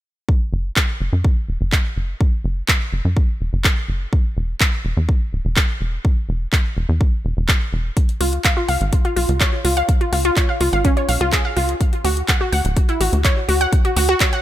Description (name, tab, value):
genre	progressive house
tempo	125 BPM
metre	4/4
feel	straight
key	unclear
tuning	A4 = 440 Hz
part	electronic kick drum	drums	0.3-14.3 s	none	-17 LUFS	equal	none
part	tight sequencer bass	bass	0.5-14.1 s	D1 to F#2	-20 LUFS	equal	sidechain pumping
part	big-room dance drum kit	drums	0.8-14.4 s	handclaps, hi-hat	-22 LUFS	equal	none
part	wide unison pluck	arpeggios	8.2-14.4 s	C#4 to F#5	-20 LUFS	equal	sidechain pumping, digital delay
room	digital ambience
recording	none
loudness	-16 LUFS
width	side -13 dB against mid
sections	0.3-14.4 A section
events	none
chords	0.3 N.C.; 8.0 C#; 11.8 D